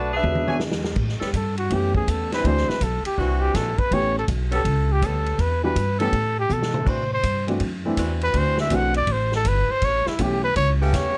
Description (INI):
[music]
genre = jazz, big band swing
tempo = 163 BPM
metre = 4/4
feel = swing 65% on 8ths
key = unclear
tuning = A4 = 438 Hz
[part]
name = warm saxophone section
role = melody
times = 0.0-0.6 s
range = A3 to E5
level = -26 LUFS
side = equal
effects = none
[part]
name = warm trumpet section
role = stabs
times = 0.0-0.6 s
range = F#4 to A5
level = -32 LUFS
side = equal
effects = none
[part]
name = upright bass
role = bass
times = 0.0-11.2 s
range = G1 to B2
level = -26 LUFS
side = equal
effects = none
[part]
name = warm baby grand piano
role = accompaniment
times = 0.2-10.4 s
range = D3 to C#5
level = -28 LUFS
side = equal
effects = none
[part]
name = swinging big-band drum kit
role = drums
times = 0.2-11.0 s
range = crash cymbal, hi-hat, kick drum, ride cymbal, snare drum, toms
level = -31 LUFS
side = equal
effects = vintage 12-bit sampler grit
[part]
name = clear saxophone section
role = sustained chords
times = 1.2-11.2 s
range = C#3 to A4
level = -32 LUFS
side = equal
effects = none
[part]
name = mellow trumpet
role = melody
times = 1.4-11.2 s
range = E4 to F#5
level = -26 LUFS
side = equal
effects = none
[sound]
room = light reverb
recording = none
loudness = -22 LUFS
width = mono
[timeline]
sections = 1.0-11.2 A section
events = drum fill 0.2-1.0, 6.5-6.9; trumpet solo 1.0-11.2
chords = 0.2 E13; 1.0 A9; 2.4 D9; 3.9 A9; 5.4 Em7; 6.1 Asus2; 6.9 D9; 9.8 A9